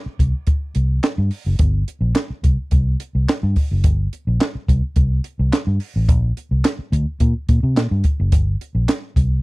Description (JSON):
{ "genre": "funk", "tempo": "107 BPM", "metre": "4/4", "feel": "straight", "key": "unclear", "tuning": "A4 = 441 Hz", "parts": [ { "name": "vintage muted fingered electric bass", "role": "bass", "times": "0.1-9.4 s", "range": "F#1 to C3", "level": "-18 LUFS", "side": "equal", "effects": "none" }, { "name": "compact cocktail drum kit", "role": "drums", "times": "0.2-9.3 s", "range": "handclaps, hi-hat, kick drum, snare drum", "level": "-18 LUFS", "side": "equal", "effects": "none" } ], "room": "little or no reverb", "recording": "dry, close 1970s-style studio recording", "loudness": "-16 LUFS", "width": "side -23 dB against mid", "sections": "0.0-9.4 A section", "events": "none", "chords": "none" }